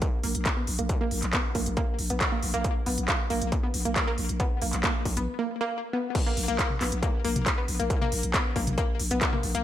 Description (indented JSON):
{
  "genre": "driving peak-time techno",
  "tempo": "137 BPM",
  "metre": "4/4",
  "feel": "straight",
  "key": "unclear",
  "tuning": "A4 = 440 Hz",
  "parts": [
    { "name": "analog pluck", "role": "riff", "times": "0.0-9.6 s", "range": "Bb3 to Cb4", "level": "-30 LUFS", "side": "equal", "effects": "chorus, tube saturation, sidechain pumping, ping-pong delay" },
    { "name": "electronic kick drum", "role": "drums", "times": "0.0-9.3 s", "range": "none", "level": "-28 LUFS", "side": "equal", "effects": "distortion, overdrive, small room ambience" },
    { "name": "techno drum kit", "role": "drums", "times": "0.0-9.6 s", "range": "crash cymbal, handclaps, hi-hat, toms", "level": "-30 LUFS", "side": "equal", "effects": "overdrive, sidechain pumping on hats, small room ambience, sidechain pumping on cymbals, sidechain pumping on toms" },
    { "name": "growling 808-style bass", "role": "bass", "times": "0.2-9.6 s", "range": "Bb1", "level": "-32 LUFS", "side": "equal", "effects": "overdrive, sidechain pumping, low-pass filter" }
  ],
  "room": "moderate plate reverb, RT60 1.4 s, digital ambience",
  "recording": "dreamy mix soaked in reverb",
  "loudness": "-25 LUFS",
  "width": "side -12 dB against mid",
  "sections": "0.0-6.1 A section; 6.1-9.6 B section",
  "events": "filter sweep on synth arpeggio sound 0.0-6.1; break 5.3-6.1; drop 6.1-9.6",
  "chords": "none",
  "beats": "0.02 0.46 | 0.89 1.33 1.77 2.21 | 2.65 3.08 3.52 3.96 | 4.40 4.84 5.27 5.71 | 6.15 6.59 7.03 7.46 | 7.90 8.34 8.78 9.21"
}